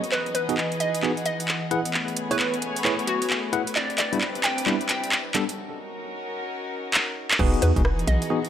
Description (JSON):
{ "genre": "UK garage, two-step garage", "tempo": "132 BPM", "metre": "4/4", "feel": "swing 63% on 16ths", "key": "E major", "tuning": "A4 = 440 Hz", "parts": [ { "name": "dark studio violin section", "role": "sustained chords", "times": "0.0-8.5 s", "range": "B3 to B4", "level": "-34 LUFS", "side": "left 1 dB", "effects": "sidechain pumping, low-pass filter" }, { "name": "garage drum kit", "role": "drums", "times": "0.0-8.5 s", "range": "crash cymbal, handclaps, hi-hat, rim click", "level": "-25 LUFS", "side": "equal", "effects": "overdrive" }, { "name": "muted studio string section", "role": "texture", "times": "0.0-8.5 s", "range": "E3 to G#5", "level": "-31 LUFS", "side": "left 1 dB", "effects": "sidechain pumping" }, { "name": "hollow square pluck", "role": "melody", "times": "0.1-8.4 s", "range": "F#4 to G5", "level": "-29 LUFS", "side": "equal", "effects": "chorus" }, { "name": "bell-like tine electric piano", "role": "stabs", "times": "0.5-8.4 s", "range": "G3 to F#5", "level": "-28 LUFS", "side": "equal", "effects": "medium stereo tremolo, low-pass filter, digital delay" }, { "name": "hollow knocking FM bass", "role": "bass", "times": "7.4-8.2 s", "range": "E1 to E2", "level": "-22 LUFS", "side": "equal", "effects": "none" }, { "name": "electronic kick drum", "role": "drums", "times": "7.4-7.8 s", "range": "none", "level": "-23 LUFS", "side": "equal", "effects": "overdrive" } ], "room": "moderate plate reverb, RT60 1.9 s, digital ambience", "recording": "none", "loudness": "-22 LUFS", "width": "side -10 dB against mid", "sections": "0.0-7.4 A section; 7.4-8.5 B section", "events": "build-up 0.0-7.4; drum fill 0.1-5.6, 6.9-7.4; break 5.6-7.4; drop 7.4-8.5", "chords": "0.1 Emaj9; 1.7 Amaj9; 3.8 Cmaj9; 5.6 F#6/C#; 7.4 Emaj9" }